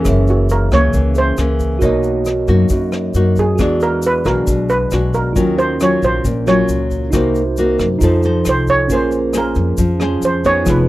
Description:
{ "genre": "bossa nova", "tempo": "136 BPM", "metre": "4/4", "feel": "straight", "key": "Bb minor", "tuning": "A4 = 439 Hz", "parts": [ { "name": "nylon-string guitar", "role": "accompaniment", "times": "0.0-10.9 s", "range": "Gb2 to C5", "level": "-18 LUFS", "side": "left 2 dB", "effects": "none" }, { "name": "tine electric piano", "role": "accompaniment", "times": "0.0-10.9 s", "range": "B3 to Fb5", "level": "-20 LUFS", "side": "right 4 dB", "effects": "none" }, { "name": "upright bass", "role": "bass", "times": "0.0-10.9 s", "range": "F1 to F#2", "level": "-18 LUFS", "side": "left 1 dB", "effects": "none" }, { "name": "vintage brush drum kit", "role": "drums", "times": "0.0-10.8 s", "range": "hi-hat, kick drum, rim click", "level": "-22 LUFS", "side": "equal", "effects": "none" }, { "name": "tube shaker", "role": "percussion", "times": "0.1-10.9 s", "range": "none", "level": "-34 LUFS", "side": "left 5 dB", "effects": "none" }, { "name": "steel pan", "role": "melody", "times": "0.3-10.9 s", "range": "Gb4 to Db5", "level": "-18 LUFS", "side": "right 2 dB", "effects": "none" } ], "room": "small room ambience", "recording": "dry, close 1970s-style studio recording", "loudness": "-13 LUFS", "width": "side -16 dB against mid", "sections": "0.0-10.9 A section", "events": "steel pan solo 0.0-10.9", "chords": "0.0 Gb7; 1.8 Bmaj7; 3.6 E9; 5.4 Ebm9; 7.1 Cm7b5; 8.0 F7; 8.9 Bbm9" }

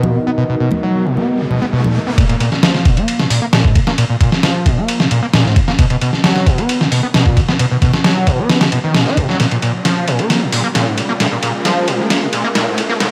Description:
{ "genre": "breakbeat, breaks", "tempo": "133 BPM", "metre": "4/4", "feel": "straight", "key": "Bb phrygian", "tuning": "A4 = 444 Hz", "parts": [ { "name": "dark analog pad", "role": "sustained chords", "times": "0.0-13.1 s", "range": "B3 to F#5", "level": "-28 LUFS", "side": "equal", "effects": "chorus, sidechain pumping" }, { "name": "screaming distorted acid line", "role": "riff", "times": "0.0-13.1 s", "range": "Ab2 to D#4", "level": "-18 LUFS", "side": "equal", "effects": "distortion, lush chorus, vintage 12-bit sampler grit, tape echo" }, { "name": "congas", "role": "percussion", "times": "0.0-1.9 s", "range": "none", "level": "-25 LUFS", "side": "equal", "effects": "none" }, { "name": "riser", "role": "sound effects", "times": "0.5-13.1 s", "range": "none", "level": "-28 LUFS", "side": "equal", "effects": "none" }, { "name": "dusty soul sampler-style drum kit", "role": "drums", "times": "2.2-13.1 s", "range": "hi-hat, kick drum, ride cymbal, snare drum", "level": "-17 LUFS", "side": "equal", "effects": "overdrive" } ], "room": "light reverb, digital ambience", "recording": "vinyl crackle, high-pass filter", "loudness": "-14 LUFS", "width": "mono", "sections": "0.0-2.2 A section; 2.2-13.1 B section", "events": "riser 0.5-2.2; build-up 2.2-13.1; filter sweep on acid bass 2.2-13.1; filter sweep 2.2-13.1; drum fill 9.4-13.1", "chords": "0.0 Bmaj7; 2.2 Bbm7; 5.8 Bmaj7; 9.4 Bbm7" }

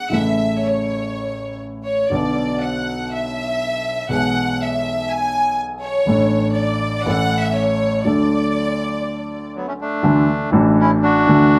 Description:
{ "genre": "tango", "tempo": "121 BPM", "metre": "4/4", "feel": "rubato", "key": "D major", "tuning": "A4 = 441 Hz", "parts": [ { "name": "bright studio violin section", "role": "second line", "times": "0.0-9.5 s", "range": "C#5 to G#5", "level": "-24 LUFS", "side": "equal", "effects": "none" }, { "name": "warm concert grand piano", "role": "accompaniment", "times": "0.0-11.6 s", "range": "A1 to A4", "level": "-21 LUFS", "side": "equal", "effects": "none" }, { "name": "bandoneon", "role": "melody", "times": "9.6-11.6 s", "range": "F#3 to F#4", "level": "-21 LUFS", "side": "equal", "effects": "none" } ], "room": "wet club reverb, RT60 0.8 s", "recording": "heard from further back in the room", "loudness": "-19 LUFS", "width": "mono", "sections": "0.0-10.0 A section; 10.0-11.6 B section", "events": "violin section solo 0.0-10.0", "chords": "0.1 A; 2.1 Bm; 4.1 E/B; 6.1 Asus4; 7.1 A; 8.0 D; 10.0 Dadd9" }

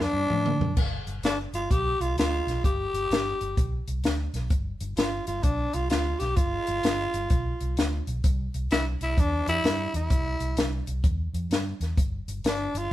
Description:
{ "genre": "electric blues shuffle", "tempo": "129 BPM", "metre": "4/4", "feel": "swing 64% on 8ths", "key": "G mixolydian", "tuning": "A4 = 435 Hz", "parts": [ { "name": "growling tenor saxophone", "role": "melody", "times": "0.0-12.9 s", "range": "D4 to G4", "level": "-28 LUFS", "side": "equal", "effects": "none" }, { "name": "vintage muted fingered electric bass", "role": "bass", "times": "0.0-12.9 s", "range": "G1 to A2", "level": "-30 LUFS", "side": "equal", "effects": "none" }, { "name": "compact cocktail drum kit", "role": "drums", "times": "0.0-12.8 s", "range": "crash cymbal, hi-hat, kick drum, snare drum, toms", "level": "-26 LUFS", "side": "equal", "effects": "none" } ], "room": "moderate studio reverb, RT60 0.8 s", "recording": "band playing live in one room, lossy compression artefacts", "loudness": "-24 LUFS", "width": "side -14 dB against mid", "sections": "0.8-12.9 A section", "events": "drum fill 0.0-0.8", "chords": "0.0 D; 0.8 G7; 8.2 C; 12.0 G5" }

